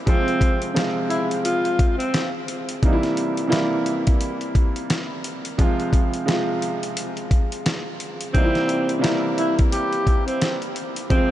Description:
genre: hip hop, boom-bap hip-hop.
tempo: 87 BPM.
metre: 4/4.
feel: swing 59% on 16ths.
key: F harmonic minor.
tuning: A4 = 440 Hz.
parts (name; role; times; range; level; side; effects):
clear concert grand piano; accompaniment; 0.0-11.3 s; C3 to F4; -24 LUFS; right 1 dB; cassette tape, high-pass filter, low-pass filter.
breathy tenor saxophone; melody; 0.1-2.3, 8.3-11.3 s; C4 to G4; -25 LUFS; equal; high-pass filter, low-pass filter, analog delay.
dusty soul sampler-style drum kit; drums; 0.1-11.3 s; hi-hat, kick drum, snare drum; -22 LUFS; equal; none.
room: moderate huge ambient reverb, RT60 8.9 s.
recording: dreamy mix soaked in reverb, nothing above 10.9 kHz.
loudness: -19 LUFS.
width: side -13 dB against mid.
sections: 0.0-11.3 A section.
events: none.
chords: 0.1 Fm; 2.8 C7; 5.6 Fm; 8.3 C7.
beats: | 0.07 0.76 1.45 2.14 | 2.83 3.52 4.21 4.90 | 5.59 6.28 6.97 7.66 | 8.35 9.04 9.72 10.41 | 11.10.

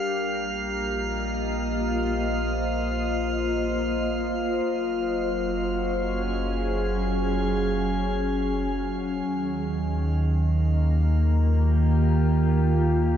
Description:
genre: ambient.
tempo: free time.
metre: none.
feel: none.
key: unclear.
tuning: A4 = 440 Hz.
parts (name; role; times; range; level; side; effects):
glassy FM pad; sustained chords; 0.0-13.2 s; Eb3 to Ab5; -25 LUFS; equal; ensemble chorus, built-in reverb.
warm sub bass; bass; 0.0-13.2 s; Gb1 to Eb2; -26 LUFS; equal; none.
drifting glass-harmonics texture; texture; 0.0-13.2 s; F5 to F6; -34 LUFS; right 1 dB; chorus, built-in reverb.
room: wet cathedral reverb, RT60 6.5 s.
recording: nothing above 7.8 kHz.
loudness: -22 LUFS.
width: side -9 dB against mid.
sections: 0.0-13.2 A section.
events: fade-in on sub bass 0.0-13.2; fade-out on synth texture 0.0-13.2.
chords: 0.0 Bbsus4; 4.7 Gbsus2; 9.3 Eb.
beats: free time.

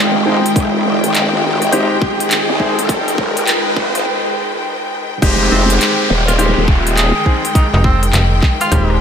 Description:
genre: glitch hop.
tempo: 103 BPM.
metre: 4/4.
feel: swing 63% on 16ths.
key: F minor.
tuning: A4 = 440 Hz.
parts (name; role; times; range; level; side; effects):
rich studio string section; sustained chords; 0.0-9.0 s; Eb3 to G5; -20 LUFS; left 1 dB; sidechain pumping, low-pass filter.
growl bass; bass; 0.0-7.1 s; Eb1 to C2; -17 LUFS; equal; chorus, tube saturation, high-pass filter.
riser and downlifter; sound effects; 0.1-9.0 s; none; -21 LUFS; right 1 dB; none.
warbly tape-like pad; texture; 0.0-4.1 s; Ab3 to G5; -23 LUFS; left 1 dB; chorus, built-in reverb, sidechain pumping.
clear concert grand piano; stabs; 0.3-8.9 s; Ab3 to Ab4; -20 LUFS; left 1 dB; sidechain pumping, tape echo.
drum and bass drum kit; drums; 0.5-9.0 s; crash cymbal, handclaps, hi-hat, rim click; -20 LUFS; equal; studio reverb.
electronic kick drum; drums; 0.6-8.9 s; none; -14 LUFS; equal; studio reverb.
warm tenor saxophone; melody; 5.5-9.0 s; C4 to Ab4; -23 LUFS; right 1 dB; vintage 12-bit sampler grit, tape echo.
slap-like FM bass; bass; 7.7-9.0 s; Eb1 to F1; -13 LUFS; equal; tube saturation.
room: moderate huge ambient reverb, RT60 8.1 s.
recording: dreamy mix soaked in reverb, high-pass filter.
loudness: -12 LUFS.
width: side -8 dB against mid.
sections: 0.0-5.2 A section; 5.2-9.0 B section.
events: build-up 0.0-5.2; riser 0.1-4.1; break 4.1-5.2; drop 5.2-9.0.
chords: 0.0 Fm9.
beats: | 0.56 1.14 1.73 2.31 | 2.89 3.47 4.06 4.64 | 5.22 5.80 6.39 6.97 | 7.55 8.13 8.72.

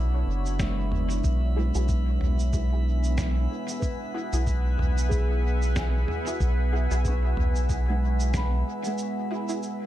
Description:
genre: ambient dub.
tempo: 93 BPM.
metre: 4/4.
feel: swing 57% on 16ths.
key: unclear.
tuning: A4 = 439 Hz.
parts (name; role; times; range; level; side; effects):
deep dark ambient pad; sustained chords; 0.0-9.9 s; B3 to G#5; -33 LUFS; left 1 dB; chorus, built-in reverb.
round analog bass; bass; 0.0-8.6 s; F#1 to B1; -24 LUFS; equal; none.
drifting glass-harmonics texture; texture; 0.0-9.9 s; E4 to E5; -40 LUFS; equal; chorus, built-in reverb.
lo-fi sampler-style drum kit; drums; 0.5-9.8 s; shaker, snare drum, toms; -35 LUFS; equal; dub echo.
kalimba; arpeggios; 0.6-9.9 s; G#3 to C#6; -35 LUFS; right 4 dB; dub echo.
electronic kick drum; drums; 0.6-8.5 s; none; -30 LUFS; equal; none.
filtered dub chord stab; stabs; 1.6-9.6 s; E4 to G#4; -38 LUFS; equal; phaser, ensemble chorus, dub echo.
room: little or no reverb.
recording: echo-heavy mix.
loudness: -23 LUFS.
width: side -13 dB against mid.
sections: 0.0-9.9 A section.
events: break 9.0-9.9.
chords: 0.0 Bmadd9; 1.2 Eadd9/B.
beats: 0.60 | 1.24 1.89 2.53 3.18 | 3.82 4.47 5.11 5.76 | 6.40 7.05 7.69 8.34 | 8.98 9.63.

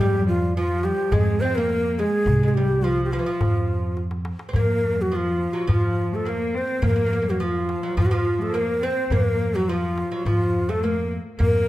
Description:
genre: Arabic maqam ensemble.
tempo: 105 BPM.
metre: 4/4.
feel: straight.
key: F minor, F maqam hijaz from 4.5 s.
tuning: A4 = 439 Hz.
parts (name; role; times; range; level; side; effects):
breathy ney; melody; 0.0-11.7 s; F4 to C5; -24 LUFS; equal; none.
oud; second line; 0.0-11.7 s; E3 to C4; -30 LUFS; right 2 dB; none.
rich cello; second line; 0.0-11.7 s; F3 to C4; -30 LUFS; left 2 dB; none.
upright bass; bass; 0.0-11.7 s; C2 to F2; -25 LUFS; equal; none.
darbuka; percussion; 0.5-11.5 s; none; -25 LUFS; equal; none.
room: moderate recital hall reverb, RT60 1.4 s.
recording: none.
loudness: -20 LUFS.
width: side -15 dB against mid.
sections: 0.0-4.5 A section; 4.5-11.7 B section.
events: drum fill 4.0-4.5.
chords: none.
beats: 0.55 1.12 1.69 | 2.26 2.83 3.40 3.97 | 4.54 5.12 5.69 6.26 | 6.83 7.40 7.97 8.54 | 9.11 9.68 10.26 10.83 | 11.40.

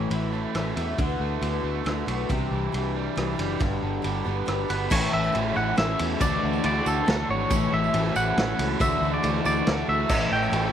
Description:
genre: folk rock and heartland rock.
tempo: 138 BPM.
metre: 3/4.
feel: straight.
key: A mixolydian.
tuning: A4 = 440 Hz.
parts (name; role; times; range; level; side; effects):
picked twelve-string acoustic guitar; accompaniment; 0.0-10.7 s; G2 to A4; -30 LUFS; left 11 dB; none.
overdriven electric guitar; riff; 0.0-10.7 s; G2 to F#4; -30 LUFS; right 12 dB; none.
fingered electric bass; bass; 0.0-10.7 s; F#1 to E2; -29 LUFS; equal; none.
vintage drum kit; drums; 0.1-10.6 s; crash cymbal, kick drum, ride cymbal, rim click, snare drum; -29 LUFS; equal; none.
twangy electric guitar; melody; 4.7-10.7 s; A4 to G5; -26 LUFS; equal; tremolo, slapback echo.
tambourine; percussion; 4.9-10.5 s; none; -42 LUFS; right 14 dB; none.
tonewheel organ; sustained chords; 10.1-10.7 s; A4 to C#6; -35 LUFS; equal; slow rotary speaker, overdrive.
room: studio ambience.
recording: 1960s-style stereo with parts hard left and right.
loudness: -22 LUFS.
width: side -9 dB against mid.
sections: 0.0-4.9 A section; 4.9-10.7 B section.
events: none.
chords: 0.0 A; 1.0 D6; 2.3 Cadd9; 3.6 G; 4.9 A; 6.2 Dadd9; 7.5 A; 8.8 Dadd9; 10.1 A.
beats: 0.12 0.55 | 0.99 1.43 1.86 | 2.30 2.73 3.17 | 3.61 4.04 4.48 | 4.91 5.34 5.78 | 6.21 6.64 7.08 | 7.51 7.94 8.37 | 8.80 9.24 9.67 | 10.10 10.53.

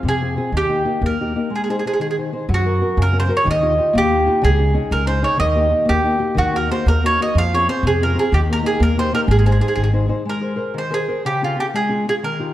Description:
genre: italian folk, Italian serenade.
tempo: 123 BPM (dotted quarters).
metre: 6/8.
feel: straight.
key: Ab major.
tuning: A4 = 439 Hz.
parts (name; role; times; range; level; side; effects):
nylon-string guitar; accompaniment; 0.0-12.5 s; C3 to C5; -22 LUFS; left 3 dB; none.
upright bass; bass; 0.0-10.1 s; Ab1 to Gb2; -19 LUFS; equal; none.
mandolin; melody; 0.1-12.5 s; F4 to F5; -19 LUFS; right 2 dB; none.
room: moderate scoring stage reverb, RT60 1.7 s.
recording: dark, warm production.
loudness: -16 LUFS.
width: side -13 dB against mid.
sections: 0.0-2.5 A section; 2.5-10.3 A section; 10.3-12.5 B section.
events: break 1.5-2.5.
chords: 0.0 Fm; 0.5 Eb; 1.5 Ab; 2.5 Gb; 3.5 Ebadd9; 4.4 Dbsus2; 5.4 Eb; 6.4 Ebm; 7.4 Fm; 8.3 Eb; 9.3 Ab; 10.3 Abadd9; 11.2 Db.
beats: 0.04 | 0.53 1.01 | 1.50 1.99 | 2.49 2.98 | 3.47 3.95 | 4.44 4.92 | 5.41 5.89 | 6.38 6.87 | 7.36 7.84 | 8.32 8.80 | 9.29 9.77 | 10.26 10.75 | 11.24 11.72 | 12.20.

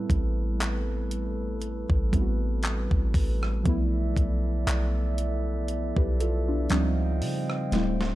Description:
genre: contemporary R&B.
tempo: 59 BPM.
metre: 4/4.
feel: swing 54% on 16ths.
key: A minor.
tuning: A4 = 439 Hz.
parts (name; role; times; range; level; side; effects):
muted felt-like synth keys; accompaniment; 0.0-8.2 s; F3 to B4; -31 LUFS; right 1 dB; chorus.
glass harmonica; sustained chords; 0.0-8.2 s; G3 to G5; -35 LUFS; equal; none.
warm 808-style bass; bass; 0.0-8.2 s; D1 to C#3; -27 LUFS; equal; none.
clean 12-bit digital drum machine; drums; 0.1-8.2 s; handclaps, hi-hat, kick drum, rim click, snare drum; -28 LUFS; equal; none.
room: little or no reverb.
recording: dark, warm production.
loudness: -24 LUFS.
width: side -16 dB against mid.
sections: 0.0-8.2 A section.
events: drum fill 7.7-8.2.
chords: 0.0 Am9; 3.7 G13/B; 6.7 C#maj9#11.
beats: 0.60 1.62 2.64 | 3.65 4.67 5.69 6.71 | 7.72.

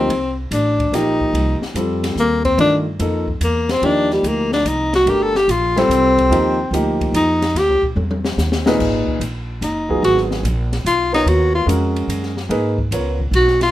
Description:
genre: modal jazz.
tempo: 145 BPM.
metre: 3/4.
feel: swing 68% on 8ths.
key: C dorian, G# dorian from 8.8 s.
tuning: A4 = 440 Hz.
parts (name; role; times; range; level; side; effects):
warm tenor saxophone; melody; 0.0-13.7 s; G3 to A4; -16 LUFS; left 1 dB; none.
warm grand piano; accompaniment; 0.0-13.2 s; Bb2 to C#5; -20 LUFS; equal; none.
upright bass; bass; 0.0-13.7 s; F#1 to G#2; -21 LUFS; equal; none.
open jazz drum kit; drums; 0.1-13.7 s; crash cymbal, hi-hat, kick drum, ride cymbal, snare drum, toms; -26 LUFS; left 2 dB; none.
room: light reverb.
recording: none.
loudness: -15 LUFS.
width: side -14 dB against mid.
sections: 0.0-8.8 A section; 8.8-13.7 A section.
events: tenor saxophone solo 0.0-13.7; drum fill 8.0-8.8.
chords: 0.0 Cm9; 7.5 Eb5; 8.8 G#m9.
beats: | 0.10 0.51 0.92 | 1.34 1.75 2.17 | 2.58 3.00 3.41 | 3.83 4.24 4.65 | 5.07 5.48 5.89 | 6.31 6.72 7.13 | 7.55 7.96 8.37 | 8.79 9.20 9.61 | 10.03 10.44 10.85 | 11.27 11.68 12.09 | 12.50 12.92 13.33.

